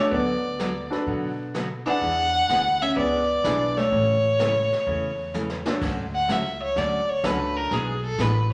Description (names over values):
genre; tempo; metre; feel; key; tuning
country, western swing; 126 BPM; 4/4; swing 69% on 8ths; unclear; A4 = 440 Hz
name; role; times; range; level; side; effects
rich fiddle; melody; 0.0-8.5 s; G#4 to F#5; -26 LUFS; equal; none
vintage hollow-body jazz guitar; second line; 0.0-5.7 s; A3 to D4; -31 LUFS; equal; none
bright upright piano; accompaniment; 0.0-7.7 s; A3 to D5; -32 LUFS; equal; none
picked steel-string acoustic guitar; accompaniment; 0.1-8.3 s; C#3 to A4; -34 LUFS; equal; none
upright bass; bass; 0.1-8.5 s; A1 to B2; -33 LUFS; equal; none
jazz brush drum kit; drums; 0.1-8.5 s; brushed snare drum, crash cymbal, hi-hat, kick drum, snare drum, toms; -36 LUFS; equal; none
room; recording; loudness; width
wet large studio reverb, RT60 1.1 s; none; -24 LUFS; mono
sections
0.0-5.8 A section; 5.8-8.5 B section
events
drum fill 5.3-5.8; fiddle solo 5.8-8.5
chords
0.1 Bm7/D; 2.0 E7; 3.9 A; 5.8 Dmaj7; 7.7 E7